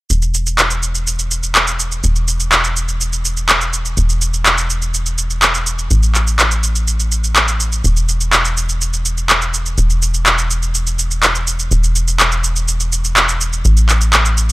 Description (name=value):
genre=melodic techno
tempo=124 BPM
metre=4/4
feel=straight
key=unclear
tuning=A4 = 439 Hz
part: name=tight sequencer bass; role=bass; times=0.1-14.5 s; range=E1 to A1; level=-16 LUFS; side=equal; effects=none
part: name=electronic shaker and handclaps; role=drums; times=0.1-14.5 s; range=none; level=-14 LUFS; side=equal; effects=none
room=little or no reverb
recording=dry, gritty hardware recording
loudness=-12 LUFS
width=side -20 dB against mid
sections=0.1-14.5 A section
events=none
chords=none